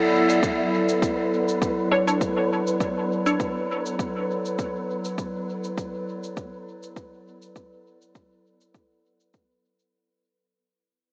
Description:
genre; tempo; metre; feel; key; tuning
ambient dub; 101 BPM; 4/4; swing 54% on 16ths; B minor; A4 = 443 Hz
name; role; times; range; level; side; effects
warbly tape-like pad; sustained chords; 0.0-9.9 s; F#3 to D5; -27 LUFS; equal; chorus, built-in reverb
wind-like tuned noise texture; texture; 0.0-9.9 s; B3 to E5; -34 LUFS; equal; built-in reverb
cabasa; drums; 0.3-9.9 s; none; -36 LUFS; equal; dub echo
electronic kick drum; drums; 0.4-9.5 s; none; -31 LUFS; equal; overdrive
filtered dub chord stab; stabs; 1.9-3.4 s; D4 to C#5; -29 LUFS; equal; phaser, analog chorus, dub echo
room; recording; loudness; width
wet huge ambient reverb, RT60 5.1 s; AM radio sound; -25 LUFS; mono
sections
0.4-9.9 A section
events
fade-out 0.4-9.9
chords
0.4 Bm7; 5.2 Asus24

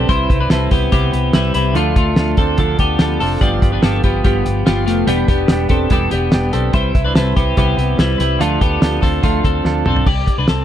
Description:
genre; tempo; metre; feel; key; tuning
jangly indie pop; 144 BPM; 4/4; straight; unclear; A4 = 443 Hz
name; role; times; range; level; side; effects
direct-recorded clean electric guitar; accompaniment; 0.0-10.1 s; G2 to B4; -20 LUFS; right 4 dB; none
twelve-string electric guitar; arpeggios; 0.0-10.6 s; G3 to D5; -19 LUFS; left 4 dB; wide subtle chorus, digital delay
vintage muted fingered electric bass; bass; 0.0-10.6 s; E1 to D2; -19 LUFS; equal; none
cloth-damped thuddy drum kit; drums; 0.1-10.6 s; crash cymbal, hi-hat, kick drum, snare drum, toms; -16 LUFS; equal; none
room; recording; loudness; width
little or no reverb; dark, warm production; -13 LUFS; side -11 dB against mid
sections
0.0-10.1 A section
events
drum fill 9.6-10.1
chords
0.1 Cmaj7; 1.8 Dm; 3.4 G7; 5.1 Em7; 6.7 Cmaj7; 8.4 Dm; 10.1 Csus2

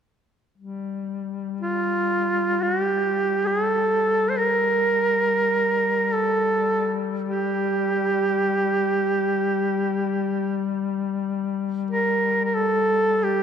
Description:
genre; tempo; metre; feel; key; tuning
caucasian folk; free time; none; none; G minor; A4 = 440 Hz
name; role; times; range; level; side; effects
warm duduk; drone; 0.6-13.4 s; G3; -27 LUFS; left 8 dB; none
clear duduk; melody; 1.6-13.4 s; F4 to C5; -21 LUFS; right 3 dB; none
room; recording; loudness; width
wet church reverb, RT60 3.0 s; none; -20 LUFS; side -8 dB against mid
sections
0.6-13.4 A section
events
none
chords
none

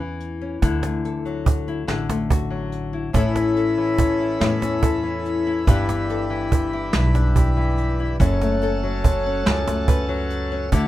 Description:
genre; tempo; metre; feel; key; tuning
acoustic folk duo or small band; 48 BPM (dotted quarters); 6/8; straight; unclear; A4 = 441 Hz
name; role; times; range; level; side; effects
nylon-string guitar; accompaniment; 0.0-10.9 s; F#2 to B4; -23 LUFS; left 4 dB; none
upright bass; bass; 0.0-10.9 s; F#1 to E2; -25 LUFS; equal; none
soft brush drum kit; drums; 0.2-10.9 s; hi-hat, kick drum, snare drum; -22 LUFS; equal; none
cajon; percussion; 0.6-10.9 s; none; -20 LUFS; right 2 dB; none
pedal harmonium; sustained chords; 3.2-10.9 s; C#4 to B5; -27 LUFS; right 1 dB; none
room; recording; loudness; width
light reverb; minimal, uncompressed stereo recording; -19 LUFS; side -14 dB against mid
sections
0.0-10.9 A section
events
none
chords
0.0 Aadd9 (rootless); 0.6 Dadd9; 3.2 Aadd9; 5.7 Em7/G; 8.2 F#m

